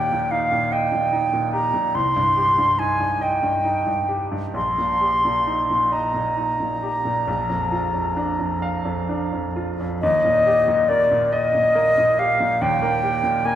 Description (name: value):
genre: classical, romantic duo for flute and grand piano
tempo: 42-50 BPM (dotted quarters)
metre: 12/8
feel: rubato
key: Eb major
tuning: A4 = 442 Hz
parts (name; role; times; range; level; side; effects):
- concert flute; melody; 0.0-13.6 s; D5 to C6; -19 LUFS; equal; none
- bright baby grand piano; accompaniment; 0.0-13.6 s; Bb1 to F5; -24 LUFS; right 1 dB; none
room: wet recital hall reverb, RT60 1.7 s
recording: heard from further back in the room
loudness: -18 LUFS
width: side -11 dB against mid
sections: 0.0-10.0 A section; 10.0-13.6 A section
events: none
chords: 0.0 Eb; 1.9 Cm; 4.6 Eb/Bb; 7.3 Bb; 10.0 Eb